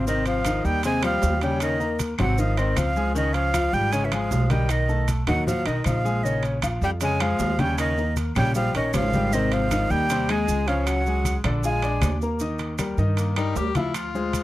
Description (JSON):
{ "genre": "Afro-Cuban jazz", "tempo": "156 BPM", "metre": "4/4", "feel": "straight", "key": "Ab major", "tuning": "A4 = 440 Hz", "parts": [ { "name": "breathy bright jazz flute", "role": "melody", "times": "0.0-12.2 s", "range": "Eb5 to Ab5", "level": "-26 LUFS", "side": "right 2 dB", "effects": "none" }, { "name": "clear tenor saxophone", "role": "second line", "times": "0.0-14.4 s", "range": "D#3 to G4", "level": "-30 LUFS", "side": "left 6 dB", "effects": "none" }, { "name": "clear grand piano", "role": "accompaniment", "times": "0.0-14.4 s", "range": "C3 to D#6", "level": "-27 LUFS", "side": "left 2 dB", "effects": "none" }, { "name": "upright bass", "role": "bass", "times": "0.0-14.4 s", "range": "Ab1 to G2", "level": "-25 LUFS", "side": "right 1 dB", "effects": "none" }, { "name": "congas", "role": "percussion", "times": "0.1-14.4 s", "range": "none", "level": "-30 LUFS", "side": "left 1 dB", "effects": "none" }, { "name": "maracas", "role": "percussion", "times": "0.1-14.4 s", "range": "none", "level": "-40 LUFS", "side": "right 8 dB", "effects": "none" }, { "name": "timbales", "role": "percussion", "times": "0.3-14.4 s", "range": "none", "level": "-34 LUFS", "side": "right 7 dB", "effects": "none" }, { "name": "claves", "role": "percussion", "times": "0.5-14.1 s", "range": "none", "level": "-38 LUFS", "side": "left 9 dB", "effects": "none" } ], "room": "little or no reverb", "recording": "dry, close 1970s-style studio recording", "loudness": "-21 LUFS", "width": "side -16 dB against mid", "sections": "0.1-12.4 A section; 12.4-14.4 B section", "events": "tenor saxophone solo 12.4-14.4", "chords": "0.1 Abmaj7; 1.6 Eb5; 2.4 Ab; 3.2 Db; 4.7 B6; 6.2 Bbm7; 7.8 Eb9; 9.3 Abmaj7; 10.9 Db5; 11.6 Bb7; 12.4 Ebmaj9", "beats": "| 0.07 0.45 0.84 1.22 | 1.61 2.00 2.38 2.77 | 3.15 3.54 3.93 4.31 | 4.70 5.08 5.47 5.86 | 6.24 6.63 7.01 7.40 | 7.79 8.17 8.56 8.94 | 9.33 9.71 10.10 10.48 | 10.87 11.25 11.64 12.02 | 12.41 12.79 13.18 13.56 | 13.95 14.34" }